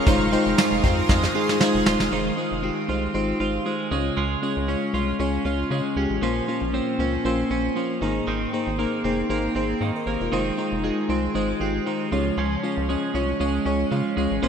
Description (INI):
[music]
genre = 1980s-style pop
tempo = 117 BPM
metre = 4/4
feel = swing 55% on 16ths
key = F minor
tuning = A4 = 440 Hz
[part]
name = FM electric piano with soft pad layer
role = accompaniment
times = 0.0-14.5 s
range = Ab2 to F5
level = -24 LUFS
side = left 2 dB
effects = chorus
[part]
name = shimmering ambient pad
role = sustained chords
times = 0.0-2.1 s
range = Ab3 to Eb6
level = -30 LUFS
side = right 1 dB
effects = chorus, built-in reverb
[part]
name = twelve-string electric guitar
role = riff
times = 0.0-14.5 s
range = Eb3 to F4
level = -28 LUFS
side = right 5 dB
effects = lush chorus, ping-pong delay
[part]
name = rubbery square bass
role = bass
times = 0.1-14.5 s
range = Eb1 to Db3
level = -28 LUFS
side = equal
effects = none
[part]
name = soft brush drum kit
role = drums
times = 0.1-2.1 s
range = hi-hat, kick drum, snare drum, tambourine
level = -23 LUFS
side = right 1 dB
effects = none
[sound]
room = moderate lush hall reverb, RT60 2.5 s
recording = bright 1980s-style digital production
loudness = -21 LUFS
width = side -7 dB against mid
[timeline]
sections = 0.0-2.1 A section; 2.1-14.5 B section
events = drum fill 1.1-2.1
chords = 0.1 Fm7; 3.9 Db; 6.2 Bbmadd9; 8.0 Abadd9; 10.3 Fm7; 12.1 Db